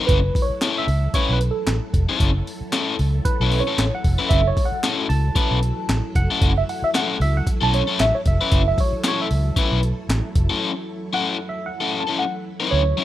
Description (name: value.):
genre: funk.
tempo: 114 BPM.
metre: 4/4.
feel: swing 56% on 16ths.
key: F# minor.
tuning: A4 = 440 Hz.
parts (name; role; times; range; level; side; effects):
crunchy overdriven guitar; accompaniment; 0.0-13.0 s; F#3 to B4; -23 LUFS; left 6 dB; none.
string machine, full ensemble; sustained chords; 0.0-13.0 s; F#3 to E5; -32 LUFS; right 1 dB; ensemble chorus.
mellow tine electric piano; melody; 0.1-13.0 s; A4 to A5; -25 LUFS; right 2 dB; phaser.
vintage muted fingered electric bass; bass; 0.1-12.9 s; E#1 to D2; -20 LUFS; equal; none.
breakbeat sampler-style drum kit; drums; 0.1-10.5 s; handclaps, hi-hat, kick drum, snare drum; -22 LUFS; equal; none.
room: little or no reverb.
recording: rough home demo mix.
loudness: -18 LUFS.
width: side -13 dB against mid.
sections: 0.0-12.7 A section.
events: tine electric piano solo 0.0-12.7; break 10.6-12.7.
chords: 0.0 F#m7.